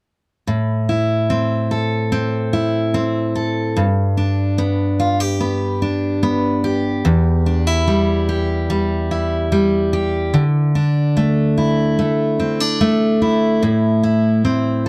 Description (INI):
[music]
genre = pop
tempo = 73 BPM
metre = 4/4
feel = straight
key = A minor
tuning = A4 = 440 Hz
[part]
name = picked steel-string acoustic guitar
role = solo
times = 0.5-14.9 s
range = E2 to A4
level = -18 LUFS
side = equal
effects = none
[sound]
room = moderate small room reverb, RT60 0.5 s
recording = none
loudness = -18 LUFS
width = mono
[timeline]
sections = 0.5-14.9 A section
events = none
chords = 0.5 Am; 3.8 G; 7.0 Em; 10.3 Dsus2; 13.6 Am